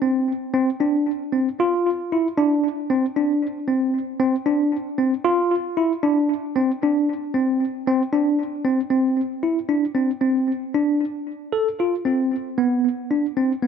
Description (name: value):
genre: progressive instrumental, progressive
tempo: 230 BPM (eighths)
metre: 7/8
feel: straight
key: unclear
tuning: A4 = 439 Hz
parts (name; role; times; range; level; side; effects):
- tine electric piano; solo; 0.0-13.7 s; B3 to A4; -19 LUFS; equal; medium stereo tremolo, tape echo
room: moderate spring reverb, RT60 1.1 s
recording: echo-heavy mix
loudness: -19 LUFS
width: side -7 dB against mid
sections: 0.0-8.9 A section; 8.9-13.7 B section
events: none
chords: none